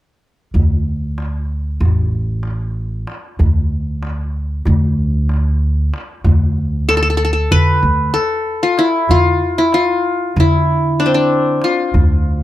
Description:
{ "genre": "Turkish makam ensemble", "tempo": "189 BPM (eighths)", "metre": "9/8", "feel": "straight", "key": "D makam nikriz", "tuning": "A4 = 440 Hz", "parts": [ { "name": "upright bass", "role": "bass", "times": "0.5-12.4 s", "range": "A1 to D3", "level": "-17 LUFS", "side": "right 1 dB", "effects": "none" }, { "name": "darbuka", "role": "percussion", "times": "0.6-12.3 s", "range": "none", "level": "-18 LUFS", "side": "equal", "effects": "none" }, { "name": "qanun", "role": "melody", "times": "6.9-12.4 s", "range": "C4 to B4", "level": "-14 LUFS", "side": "left 2 dB", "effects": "none" } ], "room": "little or no reverb", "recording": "close, detailed microphones", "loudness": "-13 LUFS", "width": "side -14 dB against mid", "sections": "0.5-6.2 A section; 6.2-12.4 B section", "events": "none", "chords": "none", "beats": "| 0.54 0.86 1.17 1.49 1.81 2.12 2.44 2.76 3.08 | 3.39 3.71 4.03 4.34 4.66 4.98 5.29 5.61 5.93 | 6.25 6.56 6.88 7.20 7.51 7.83 8.15 8.46 8.78 | 9.10 9.41 9.73 10.05 10.36 10.68 11.00 11.31 11.63 | 11.94 12.26" }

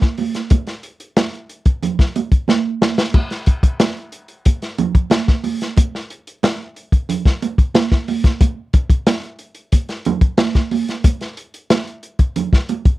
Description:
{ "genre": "funk", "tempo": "91 BPM", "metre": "4/4", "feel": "straight", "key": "none", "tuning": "none", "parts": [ { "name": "crunchy breakbeat drum kit", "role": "drums", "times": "0.0-13.0 s", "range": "crash cymbal, hi-hat, kick drum, snare drum", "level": "-14 LUFS", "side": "left 1 dB", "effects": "none" }, { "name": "congas", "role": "percussion", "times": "0.2-12.8 s", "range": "none", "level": "-21 LUFS", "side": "right 7 dB", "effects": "none" } ], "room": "little or no reverb", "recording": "dry, close 1970s-style studio recording", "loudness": "-15 LUFS", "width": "side -17 dB against mid", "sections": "0.0-13.0 A section", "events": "drum fill 2.5-3.1", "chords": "none", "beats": "| 0.51 1.17 1.83 2.48 | 3.14 3.80 4.46 5.11 | 5.77 6.43 7.09 7.75 | 8.40 9.06 9.72 10.38 | 11.04 11.70 12.36" }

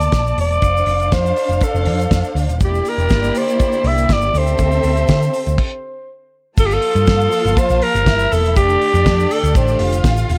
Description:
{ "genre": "disco", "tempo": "121 BPM", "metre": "4/4", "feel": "straight", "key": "G dorian", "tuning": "A4 = 445 Hz", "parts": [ { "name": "growling alto saxophone", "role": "melody", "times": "0.0-10.0 s", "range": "G4 to E5", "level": "-20 LUFS", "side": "equal", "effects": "tape echo" }, { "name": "dark symphonic string section", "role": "second line", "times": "0.0-10.4 s", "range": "Bb3 to A5", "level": "-27 LUFS", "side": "equal", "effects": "none" }, { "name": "hollow-body short-scale picked electric bass", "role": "bass", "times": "0.0-10.4 s", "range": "Eb1 to D3", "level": "-20 LUFS", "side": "equal", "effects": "none" }, { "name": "damped 70s drum kit", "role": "drums", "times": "0.0-10.4 s", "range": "crash cymbal, hi-hat, kick drum, snare drum", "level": "-21 LUFS", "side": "equal", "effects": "none" }, { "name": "egg shaker", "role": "percussion", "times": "0.0-10.4 s", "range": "none", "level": "-42 LUFS", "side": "equal", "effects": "none" }, { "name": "clear studio string section", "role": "sustained chords", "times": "2.6-10.4 s", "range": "D3 to A5", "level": "-28 LUFS", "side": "equal", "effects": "none" } ], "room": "small room reverb", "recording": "none", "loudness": "-16 LUFS", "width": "mono", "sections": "0.0-6.6 A section; 6.6-10.4 B section", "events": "stop 5.6-6.6", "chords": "0.0 Gmadd9 (rootless); 0.6 F6; 2.6 C9/E; 4.3 D7sus4; 6.6 Gm9; 8.6 F69", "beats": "0.13 | 0.62 1.12 1.61 2.11 | 2.61 3.10 3.60 4.09 | 4.59 5.08 5.58 6.08 | 6.57 7.07 7.56 8.06 | 8.55 9.05 9.54 10.04" }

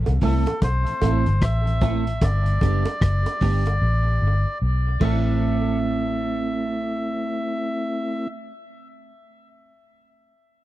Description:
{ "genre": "dub reggae", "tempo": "75 BPM", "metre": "4/4", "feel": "swing 61% on 16ths", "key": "A minor", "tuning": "A4 = 444 Hz", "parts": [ { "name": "vintage muted fingered electric bass", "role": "bass", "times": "0.0-8.3 s", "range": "F#1 to C2", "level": "-21 LUFS", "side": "equal", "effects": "none" }, { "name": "mellow tonewheel organ", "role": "accompaniment", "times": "0.1-8.3 s", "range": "G2 to E4", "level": "-29 LUFS", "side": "left 2 dB", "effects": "chorus vibrato" }, { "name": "vintage drum kit", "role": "drums", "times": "0.1-5.2 s", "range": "crash cymbal, hi-hat, kick drum, rim click", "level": "-24 LUFS", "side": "equal", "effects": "none" }, { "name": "bongos", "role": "percussion", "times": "0.1-5.8 s", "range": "none", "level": "-32 LUFS", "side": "right 4 dB", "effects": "tape echo" }, { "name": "melodica", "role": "melody", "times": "0.2-8.3 s", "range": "A4 to E5", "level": "-29 LUFS", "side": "equal", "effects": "tape echo" }, { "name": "clean electric guitar", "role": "accompaniment", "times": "0.2-8.5 s", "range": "G3 to A4", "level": "-29 LUFS", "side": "right 6 dB", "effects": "analog chorus, tape echo" } ], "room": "studio ambience", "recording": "dry, close 1970s-style studio recording", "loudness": "-20 LUFS", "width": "side -15 dB against mid", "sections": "0.0-5.4 A section; 5.4-8.6 B section", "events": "drums muted 3.8-5.4", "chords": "0.0 Am; 2.2 G; 5.0 Am", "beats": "0.62 1.41 | 2.21 3.01 3.81 4.61 | 5.41 6.21 7.01 7.81" }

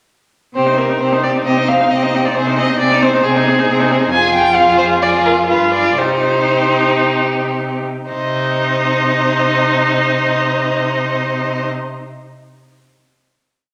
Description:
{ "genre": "quick classical-period movement for string quartet", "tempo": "108-138 BPM", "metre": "4/4", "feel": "rubato", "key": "C minor", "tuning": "A4 = 440 Hz", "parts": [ { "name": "clear violin", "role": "melody", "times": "0.6-11.7 s", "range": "G4 to Eb5", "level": "-23 LUFS", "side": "equal", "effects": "none" }, { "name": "warm violin", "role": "second line", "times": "0.6-11.6 s", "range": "Ab4 to Ab5", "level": "-19 LUFS", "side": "equal", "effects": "none" }, { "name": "warm viola", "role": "accompaniment", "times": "0.6-11.7 s", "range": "C4 to F4", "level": "-19 LUFS", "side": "equal", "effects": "none" }, { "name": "rich cello", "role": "bass", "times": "0.6-11.7 s", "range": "F2 to C3", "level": "-25 LUFS", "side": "equal", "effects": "none" } ], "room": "wet recital hall reverb, RT60 1.5 s", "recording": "none", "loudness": "-15 LUFS", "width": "mono", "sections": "0.6-8.1 A section; 8.1-12.4 final chord", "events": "slowing down 3.2-8.1", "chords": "0.6 Cm; 4.1 Fm; 5.5 G7b9; 6.0 Cm", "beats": "| 0.55 1.00 1.45 1.91 | 2.35 2.79 3.24 3.67 | 4.11 4.56 5.02 5.49 | 5.98 6.48 7.01 7.54 | 8.09 8.63 9.17 9.70 | 10.24 10.77 11.31" }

